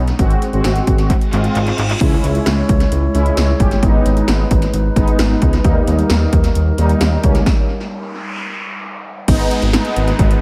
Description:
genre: synth-pop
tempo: 132 BPM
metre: 4/4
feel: straight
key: unclear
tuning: A4 = 443 Hz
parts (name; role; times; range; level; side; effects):
- mellow synth brass; accompaniment; 0.0-10.4 s; G3 to G4; -22 LUFS; equal; chorus, tape echo
- smooth gliding synth bass; bass; 0.0-10.3 s; G1 to D#2; -19 LUFS; equal; none
- 80s electronic pad drums; drums; 0.1-10.4 s; crash cymbal, handclaps, hi-hat, kick drum, snare drum; -19 LUFS; equal; tape echo
- reverse cymbal, noise sweep and downlifter; sound effects; 1.3-2.0, 7.8-10.4 s; none; -29 LUFS; equal; none
- glass harmonica; sustained chords; 2.0-10.4 s; G3 to C#5; -26 LUFS; equal; none
room: light reverb, digital ambience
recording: echo-heavy mix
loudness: -15 LUFS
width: mono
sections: 0.0-2.0 A section; 2.0-9.3 B section; 9.3-10.4 C section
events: drum fill 1.1-2.0; reverse cymbal 1.3-2.0; stop 7.5-9.3; noise sweep 7.8-9.3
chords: 0.2 G#7; 2.0 C#m; 3.8 G#m; 5.6 D#; 9.3 G#m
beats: | 0.19 0.65 1.10 1.55 | 2.01 2.46 2.92 3.37 | 3.83 4.28 4.74 5.19 | 5.64 6.10 6.55 7.01 | 7.46 7.92 8.37 8.83 | 9.28 9.74 10.19

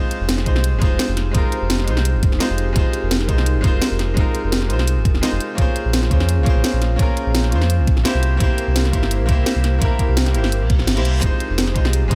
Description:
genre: liquid drum and bass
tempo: 170 BPM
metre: 4/4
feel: swing 53% on 16ths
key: F minor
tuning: A4 = 438 Hz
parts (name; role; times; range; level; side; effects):
- bright grand piano; accompaniment; 0.0-12.2 s; Ab3 to C5; -27 LUFS; equal; delay
- airy breathy pad; sustained chords; 0.0-12.2 s; Db4 to C5; -31 LUFS; equal; chorus, sidechain pumping
- drum and bass drum kit; drums; 0.1-12.2 s; hi-hat, snare drum; -25 LUFS; equal; overdrive, studio reverb
- sub bass with octave; bass; 0.2-12.2 s; F1 to F2; -21 LUFS; equal; none
- electronic kick drum; drums; 0.5-12.2 s; none; -21 LUFS; equal; studio reverb
- reverse cymbal; sound effects; 10.6-11.2 s; none; -38 LUFS; equal; none
room: little or no reverb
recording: none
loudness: -18 LUFS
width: mono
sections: 0.0-12.2 A section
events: reverse cymbal 10.6-11.2; kick drops out 10.9-11.2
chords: 0.0 Fm7; 5.6 Bbm9; 8.2 C7; 11.2 Fm7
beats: 0.29 0.64 0.99 | 1.35 1.70 2.05 2.41 | 2.76 3.11 3.46 3.82 | 4.17 4.52 4.88 5.23 | 5.58 5.93 6.29 6.64 | 6.99 7.35 7.70 8.05 | 8.41 8.76 9.11 9.46 | 9.82 10.17 10.52 10.88 | 11.23 11.58 11.94

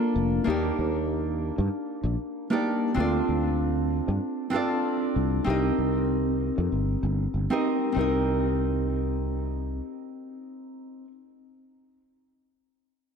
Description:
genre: sunset chillout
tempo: 96 BPM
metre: 4/4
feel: swing 55% on 16ths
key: C dorian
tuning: A4 = 441 Hz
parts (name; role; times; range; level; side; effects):
- nylon-string guitar; accompaniment; 0.0-11.1 s; Bb3 to Eb5; -26 LUFS; moving between left 4 dB and right 2 dB; auto-pan, analog delay
- sustaining fretless electric bass; bass; 0.2-9.8 s; F1 to G2; -27 LUFS; equal; lush chorus
room: wet plate reverb, RT60 2.4 s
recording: dreamy mix soaked in reverb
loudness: -24 LUFS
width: side -6 dB against mid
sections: 0.0-8.0 A section; 8.0-10.5 B section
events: none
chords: 0.5 Ebmaj7; 3.0 Dm7; 5.5 Cm7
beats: | 0.46 1.09 1.71 2.34 | 2.96 3.59 4.21 4.84 | 5.46 6.09 6.71 7.34 | 7.96 8.59 9.21 9.84

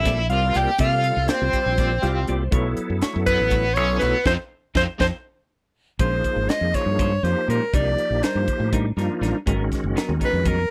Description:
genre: electric jazz fusion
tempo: 242 BPM (eighths)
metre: 7/8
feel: straight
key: Bb dorian from 6.0 s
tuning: A4 = 440 Hz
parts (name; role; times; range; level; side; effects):
- bright soprano saxophone; melody; 0.0-10.7 s; Bb4 to G5; -25 LUFS; equal; slapback echo
- overdriven electric guitar; second line; 0.0-5.1 s; B3 to G4; -30 LUFS; equal; tremolo
- bright tonewheel organ; accompaniment; 0.0-10.6 s; Eb3 to F5; -30 LUFS; equal; slow rotary speaker, overdrive, chorus vibrato
- fingered electric bass; bass; 0.0-10.6 s; Gb1 to C3; -26 LUFS; equal; none
- clean electric guitar; stabs; 0.1-10.6 s; Gb3 to D5; -33 LUFS; equal; lush chorus
- crisp fusion drum kit; drums; 0.1-10.6 s; hi-hat, kick drum, snare drum; -27 LUFS; equal; none
room: little or no reverb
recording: dry, close 1970s-style studio recording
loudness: -22 LUFS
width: mono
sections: 0.0-6.0 A section; 6.0-10.7 B section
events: tonewheel organ fill 1.8-2.5, 5.3-6.0; band accent 4.3-6.0; drum fill 5.3-6.0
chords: 0.0 C9sus4; 2.5 B9sus4; 4.3 F7(no3); 6.0 Bbm9; 7.7 Cm9; 9.5 Abm9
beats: 0.06 0.31 0.56 | 0.80 1.05 1.30 1.54 1.79 2.04 2.29 | 2.53 2.78 3.03 3.28 3.52 3.77 4.02 | 4.27 4.51 4.76 5.01 5.25 5.50 5.75 | 6.00 6.25 6.49 6.74 6.99 7.24 7.49 | 7.73 7.98 8.23 8.48 8.72 8.97 9.22 | 9.47 9.72 9.96 10.21 10.46

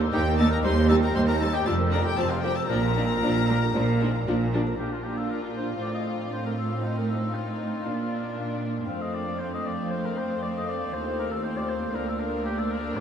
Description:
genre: classical, baroque-style concerto movement with solo episodes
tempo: 117 BPM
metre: 4/4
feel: straight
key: Bb major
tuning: A4 = 440 Hz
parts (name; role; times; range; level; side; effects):
- lute; accompaniment; 0.0-13.0 s; D2 to Eb5; -37 LUFS; left 1 dB; none
- clear studio cello section; bass; 0.0-13.0 s; D2 to Bb2; -28 LUFS; right 2 dB; none
- rich studio double bass section; bass; 0.0-4.7 s; F1 to Eb2; -29 LUFS; right 3 dB; none
- mellow oboe; melody; 0.1-13.0 s; F4 to F5; -32 LUFS; left 2 dB; none
- rich chamber violin section; melody; 0.1-13.0 s; F5 to C6; -35 LUFS; left 8 dB; none
- rich studio violin section; second line; 0.1-13.0 s; C4 to F4; -33 LUFS; left 2 dB; none
- rich studio viola section; accompaniment; 0.1-13.0 s; F3 to D4; -32 LUFS; equal; none
room: wet huge ambient reverb, RT60 8.5 s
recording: in a vast, echoing space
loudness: -24 LUFS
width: side -8 dB against mid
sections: 0.0-4.8 A section; 4.8-13.0 B section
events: none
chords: 0.0 Eb; 0.6 Eb6; 1.7 Bb5/F; 2.2 F5; 2.7 Bb; 5.8 F/A; 6.8 F7/A; 7.9 Bb; 8.9 F; 10.9 F7/Eb; 11.9 Bb/D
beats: 0.13 | 0.64 1.15 1.66 2.18 | 2.70 3.23 3.75 4.27 | 4.79 5.30 5.82 6.33 | 6.84 7.35 7.87 8.38 | 8.89 9.40 9.91 10.42 | 10.93 11.44 11.95 12.46 | 12.97

